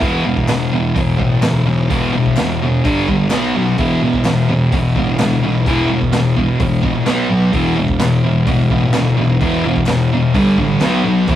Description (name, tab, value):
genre	garage rock duo or trio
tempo	128 BPM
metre	4/4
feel	straight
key	E minor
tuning	A4 = 440 Hz
part	thick fuzz guitar	riff	0.0-11.4 s	E2 to B3	-14 LUFS	equal	distortion
part	fuzz picked electric bass	bass	0.0-11.4 s	E1 to F#2	-24 LUFS	equal	overdrive
part	raw garage drum kit	drums	0.0-11.4 s	hi-hat, kick drum, snare drum	-22 LUFS	equal	none
part	group handclap	percussion	0.5-10.9 s	none	-30 LUFS	left 2 dB	none
room	moderate studio reverb, RT60 0.6 s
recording	rough rehearsal-room recording, tube saturation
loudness	-13 LUFS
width	side -12 dB against mid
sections	0.0-11.4 A section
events	none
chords	0.0 E5; 2.8 G5; 3.3 B5; 3.8 E5; 7.1 B5; 7.5 E5; 10.3 G5; 10.8 B5